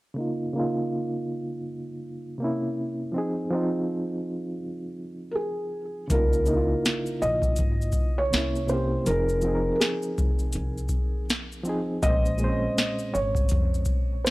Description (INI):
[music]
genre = lo-fi hip hop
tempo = 81 BPM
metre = 4/4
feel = swing 62% on 16ths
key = unclear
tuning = A4 = 439 Hz
[part]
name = bright reed electric piano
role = accompaniment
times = 0.1-14.3 s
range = Bb2 to C5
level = -29 LUFS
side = equal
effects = fast tremolo, cassette tape, low-pass filter
[part]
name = felt-muted upright piano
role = melody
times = 5.3-14.3 s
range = Ab4 to Eb5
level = -28 LUFS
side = right 1 dB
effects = low-pass filter, tape echo
[part]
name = upright bass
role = bass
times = 6.1-13.8 s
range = F1 to F2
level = -29 LUFS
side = equal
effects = tube saturation
[part]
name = booming analog drum machine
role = drums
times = 6.1-14.3 s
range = hi-hat, kick drum, shaker, snare drum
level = -25 LUFS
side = equal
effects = none
[sound]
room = little or no reverb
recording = dry, gritty hardware recording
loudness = -24 LUFS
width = side -20 dB against mid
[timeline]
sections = 0.2-6.1 A section; 6.1-14.3 B section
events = filter sweep on reed electric piano 0.2-6.1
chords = 0.2 Db69; 2.4 C7b9; 3.1 Fm7; 6.1 Db69; 8.3 C7b9; 9.1 Fm7; 12.0 Bbm9